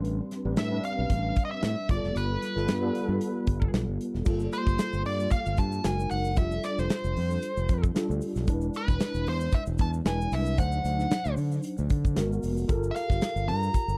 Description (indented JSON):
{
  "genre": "polished 1980s jazz-funk pop",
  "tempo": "114 BPM",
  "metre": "4/4",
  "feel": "swing 54% on 16ths",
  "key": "unclear",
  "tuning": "A4 = 435 Hz",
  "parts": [
    { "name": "tine electric piano", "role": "accompaniment", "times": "0.0-14.0 s", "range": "F#3 to C6", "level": "-35 LUFS", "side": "equal", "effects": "ensemble chorus" },
    { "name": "overdriven fingered electric bass", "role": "bass", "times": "0.0-14.0 s", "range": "E1 to D3", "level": "-32 LUFS", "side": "equal", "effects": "none" },
    { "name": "modern studio drum kit", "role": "drums", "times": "0.0-13.9 s", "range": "crash cymbal, hi-hat, kick drum, snare drum", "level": "-29 LUFS", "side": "equal", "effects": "none" },
    { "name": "nasal lead guitar with a parked wah", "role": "melody", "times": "0.6-14.0 s", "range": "B4 to Bb5", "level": "-35 LUFS", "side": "equal", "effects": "overdrive" },
    { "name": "tube shaker", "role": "percussion", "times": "4.3-14.0 s", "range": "none", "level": "-55 LUFS", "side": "equal", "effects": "none" }
  ],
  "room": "little or no reverb",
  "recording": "dry, close 1970s-style studio recording",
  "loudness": "-28 LUFS",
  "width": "mono",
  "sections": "0.0-4.3 A section; 4.3-14.0 B section",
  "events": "none",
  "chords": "0.0 Am11; 1.9 G9; 4.3 Gm9; 5.8 F#69; 6.4 F69; 8.5 E7; 10.6 D7b9; 12.2 Abm9; 12.7 Gm9",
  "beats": "| 0.05 0.58 1.10 1.63 | 2.16 2.68 3.21 3.74 | 4.26 4.79 5.32 5.84 | 6.37 6.90 7.42 7.95 | 8.48 9.01 9.53 10.06 | 10.59 11.11 11.64 12.16 | 12.69 13.22 13.74"
}